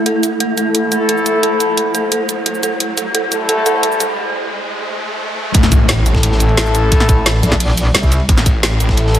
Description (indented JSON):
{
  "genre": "dark technical drum and bass",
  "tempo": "175 BPM",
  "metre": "4/4",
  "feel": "straight",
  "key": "A minor",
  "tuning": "A4 = 440 Hz",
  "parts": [
    { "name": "swarming drone", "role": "sustained chords", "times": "0.0-5.5 s", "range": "A3 to C5", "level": "-22 LUFS", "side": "right 1 dB", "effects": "built-in reverb, analog chorus, sidechain pumping" },
    { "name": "riser and impact", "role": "sound effects", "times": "0.7-6.9 s", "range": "none", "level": "-22 LUFS", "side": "left 1 dB", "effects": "none" },
    { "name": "dark detuned synth bell", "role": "arpeggios", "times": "0.1-4.1 s", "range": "A4", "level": "-20 LUFS", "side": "right 2 dB", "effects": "chorus, tremolo, sidechain pumping, analog delay" },
    { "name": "drum and bass drum kit", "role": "drums", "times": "0.1-9.2 s", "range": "hi-hat, shaker, snare drum", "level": "-17 LUFS", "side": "right 1 dB", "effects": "none" },
    { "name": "warm brass ensemble", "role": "stabs", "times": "0.6-9.2 s", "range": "A3 to A4", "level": "-19 LUFS", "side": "left 2 dB", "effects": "low-pass filter, analog delay" },
    { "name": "snarling distorted saw bass", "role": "bass", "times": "5.5-9.2 s", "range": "A1", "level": "-14 LUFS", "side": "equal", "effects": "distortion, sidechain pumping" },
    { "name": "crunchy breakbeat drum kit", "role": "drums", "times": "5.5-9.2 s", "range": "hi-hat, ride cymbal, snare drum", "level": "-26 LUFS", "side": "equal", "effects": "none" },
    { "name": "electronic kick drum", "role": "drums", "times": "5.5-9.0 s", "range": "none", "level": "-13 LUFS", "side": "equal", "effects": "none" },
    { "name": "metallic wobble bass", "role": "bass", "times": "7.4-8.3 s", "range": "Bb1 to C2", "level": "-14 LUFS", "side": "equal", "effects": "chorus" }
  ],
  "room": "moderate lush hall reverb, RT60 1.9 s, studio ambience",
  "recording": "dreamy mix soaked in reverb, high-pass filter",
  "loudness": "-12 LUFS",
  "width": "side -11 dB against mid",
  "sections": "0.0-5.5 A section; 5.5-9.2 B section",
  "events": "build-up 0.0-5.5; filter sweep on synth drone 0.0-5.5; riser 0.7-5.5; break 4.2-5.5; drop 5.5-9.2; impact 5.5-6.9",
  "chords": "0.0 A5",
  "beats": "| 0.06 0.40 0.75 1.09 | 1.43 1.77 2.12 2.46 | 2.80 3.15 3.49 3.83 | 4.17 4.52 4.86 5.20 | 5.55 5.89 6.23 6.58 | 6.92 7.26 7.60 7.95 | 8.29 8.63 8.97"
}